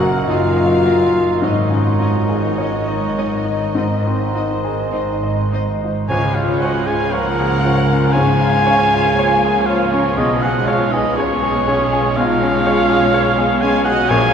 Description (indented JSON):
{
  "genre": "classical, romantic movement for piano and orchestra",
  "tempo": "50-64 BPM",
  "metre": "4/4",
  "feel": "rubato",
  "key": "Db major",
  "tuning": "A4 = 439 Hz",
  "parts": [
    { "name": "clear grand piano", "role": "melody", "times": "0.0-14.3 s", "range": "Bb1 to Eb5", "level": "-20 LUFS", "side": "left 2 dB", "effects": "none" },
    { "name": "mellow hollow concert flute", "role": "second line", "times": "0.0-14.2 s", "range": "Eb5 to Db6", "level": "-31 LUFS", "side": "equal", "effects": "none" },
    { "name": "rich studio violin section", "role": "second line", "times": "0.0-14.3 s", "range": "Ab4 to Gb5", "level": "-26 LUFS", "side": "left 1 dB", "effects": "none" },
    { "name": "warm clarinet", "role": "second line", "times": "0.0-14.3 s", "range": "Eb4 to Db5", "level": "-29 LUFS", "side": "equal", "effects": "none" },
    { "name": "warm cor anglais", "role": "second line", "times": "0.0-14.3 s", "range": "Bb4 to Ab5", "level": "-20 LUFS", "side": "right 1 dB", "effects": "none" },
    { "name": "dark bassoon", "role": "accompaniment", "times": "0.0-14.3 s", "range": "Eb3 to Bb3", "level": "-28 LUFS", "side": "right 3 dB", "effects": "none" },
    { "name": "clear French horn section", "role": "sustained chords", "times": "0.0-14.3 s", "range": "Db4 to Bb4", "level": "-22 LUFS", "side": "left 2 dB", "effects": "none" },
    { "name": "dark studio cello section", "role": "bass", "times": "0.0-14.3 s", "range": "Gb2 to Db3", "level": "-24 LUFS", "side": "right 1 dB", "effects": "none" },
    { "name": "warm studio double bass section", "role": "bass", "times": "0.0-14.3 s", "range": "Gb1 to Db2", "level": "-25 LUFS", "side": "right 3 dB", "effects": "none" },
    { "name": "warm studio violin section", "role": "melody", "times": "0.3-14.3 s", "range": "Db4 to Eb5", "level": "-32 LUFS", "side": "left 4 dB", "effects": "none" },
    { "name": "warm studio viola section", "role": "accompaniment", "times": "0.3-14.3 s", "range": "Eb3 to Eb4", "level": "-26 LUFS", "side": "right 3 dB", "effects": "none" },
    { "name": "timpani", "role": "percussion", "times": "6.1-7.6 s", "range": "none", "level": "barely audible", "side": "none", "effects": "none" }
  ],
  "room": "wet cathedral reverb, RT60 7.0 s",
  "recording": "heard from further back in the room",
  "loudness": "-14 LUFS",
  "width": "side -7 dB against mid",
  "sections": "0.0-6.1 A section; 6.1-14.3 B section",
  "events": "none",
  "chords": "0.0 Ebm/Gb; 1.4 Absus4; 3.8 Ab; 6.1 Db; 10.2 Db7/Cb"
}